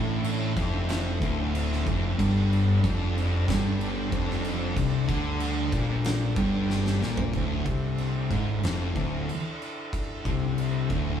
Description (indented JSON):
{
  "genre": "stoner and doom metal",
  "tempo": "93 BPM",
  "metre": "4/4",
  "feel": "straight",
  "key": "D minor",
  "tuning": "A4 = 440 Hz",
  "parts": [
    { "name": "tonewheel organ", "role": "sustained chords", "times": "0.0-11.2 s", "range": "D3 to A4", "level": "-38 LUFS", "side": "right 2 dB", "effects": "chorus vibrato" },
    { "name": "thick fuzz guitar", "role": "riff", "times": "0.0-11.2 s", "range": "D2 to D3", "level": "-28 LUFS", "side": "left 5 dB", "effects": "distortion" },
    { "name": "thick fuzz guitar", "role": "riff", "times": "0.0-11.2 s", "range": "D2 to D3", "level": "-30 LUFS", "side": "right 5 dB", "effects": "distortion" },
    { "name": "fuzz fingered electric bass", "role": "bass", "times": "0.0-11.2 s", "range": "D1 to D2", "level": "-31 LUFS", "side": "equal", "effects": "overdrive" },
    { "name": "oversized low-tuned drum kit", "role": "drums", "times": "0.2-11.1 s", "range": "crash cymbal, kick drum, snare drum, toms", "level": "-32 LUFS", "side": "equal", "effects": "none" }
  ],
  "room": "moderate studio reverb, RT60 0.9 s",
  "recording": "band playing live in one room, small room ambience",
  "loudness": "-24 LUFS",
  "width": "side -9 dB against mid",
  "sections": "0.0-7.3 A section; 7.3-11.2 B section",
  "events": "drum fill 6.7-7.3",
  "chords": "0.0 Dm; 2.2 G5; 7.3 Dm"
}